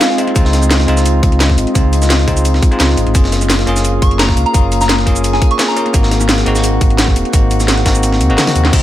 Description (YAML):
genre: liquid drum and bass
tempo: 172 BPM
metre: 4/4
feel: straight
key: unclear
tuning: A4 = 440 Hz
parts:
  - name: soft synth bell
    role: melody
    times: 0.0-0.4, 4.0-5.9 s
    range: F5 to Db6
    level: -20 LUFS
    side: left 1 dB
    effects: chorus, phaser, digital delay
  - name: bell-like tine electric piano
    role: accompaniment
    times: 0.0-8.8 s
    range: Ab3 to Ab4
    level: -18 LUFS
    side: equal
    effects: digital delay
  - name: glassy FM pad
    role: sustained chords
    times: 0.0-8.8 s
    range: Bb3 to Gb5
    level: -21 LUFS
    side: left 1 dB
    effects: ensemble chorus, built-in reverb, sidechain pumping
  - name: breakbeat sampler-style drum kit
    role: drums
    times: 0.0-8.8 s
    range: hi-hat, snare drum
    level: -21 LUFS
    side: equal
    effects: high-pass filter on hats, high-pass filter on snare, high-pass filter on room
  - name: drum and bass drum kit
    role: drums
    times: 0.0-8.8 s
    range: crash cymbal, hi-hat, shaker, snare drum, toms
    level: -18 LUFS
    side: equal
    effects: none
  - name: sub bass with octave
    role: bass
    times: 0.4-8.8 s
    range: Eb1 to Eb2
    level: -14 LUFS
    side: equal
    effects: none
  - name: electronic kick drum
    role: drums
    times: 0.4-8.8 s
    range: none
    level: -12 LUFS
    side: equal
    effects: none
room: digital ambience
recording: none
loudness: -10 LUFS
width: side -13 dB against mid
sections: 0.0-8.7 A section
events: drop 0.0-8.7; kick drops out 8.0-8.7; drum fill 8.4-8.7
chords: 0.0 Dbmaj9; 3.1 Gbmaj9; 5.9 Ab7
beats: 0.01 | 0.36 0.71 1.06 1.41 | 1.75 2.10 2.45 2.80 | 3.15 3.50 3.85 4.20 | 4.54 4.89 5.24 5.59 | 5.94 6.29 6.64 6.99 | 7.33 7.68 8.03 8.38 | 8.73